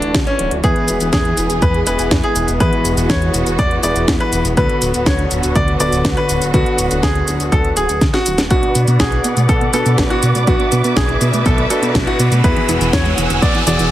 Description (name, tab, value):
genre	italo disco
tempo	122 BPM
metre	4/4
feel	straight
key	unclear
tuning	A4 = 439 Hz
part	bright grand piano	melody	0.0-13.9 s	C#4 to D5	-20 LUFS	left 1 dB	ping-pong delay
part	dark studio string section	sustained chords	0.0-13.9 s	D3 to E6	-22 LUFS	right 1 dB	low-pass filter
part	chorused synth bass	bass	0.0-13.9 s	D1 to B2	-19 LUFS	equal	none
part	house drum kit	drums	0.0-13.9 s	cabasa, hi-hat, snare drum	-21 LUFS	equal	none
part	electronic kick drum	drums	0.1-13.5 s	none	-18 LUFS	equal	none
part	warm electric grand piano	stabs	0.6-13.9 s	B2 to B4	-22 LUFS	left 1 dB	low-pass filter
part	soft round pluck	arpeggios	8.5-13.9 s	D3 to E4	-23 LUFS	right 3 dB	chorus, ping-pong delay
part	riser	sound effects	10.3-13.9 s	none	-26 LUFS	right 1 dB	none
room	light reverb, digital ambience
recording	heavily compressed radio sound, multiband compression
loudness	-13 LUFS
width	side -13 dB against mid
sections	0.0-8.5 A section; 8.5-13.9 B section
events	drum fill 8.0-8.5; filter sweep on synth arpeggio sound 8.5-13.9; filter sweep on string section 8.5-13.9; riser 10.3-13.9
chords	0.0 Dadd9; 0.6 E; 4.6 Bm/D; 8.5 Bm; 12.4 Eadd9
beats	0.15 | 0.64 1.13 1.62 2.11 | 2.60 3.10 3.59 4.08 | 4.57 5.06 5.55 6.05 | 6.54 7.03 7.52 8.01 | 8.51 9.00 9.49 9.98 | 10.47 10.96 11.46 11.95 | 12.44 12.93 13.42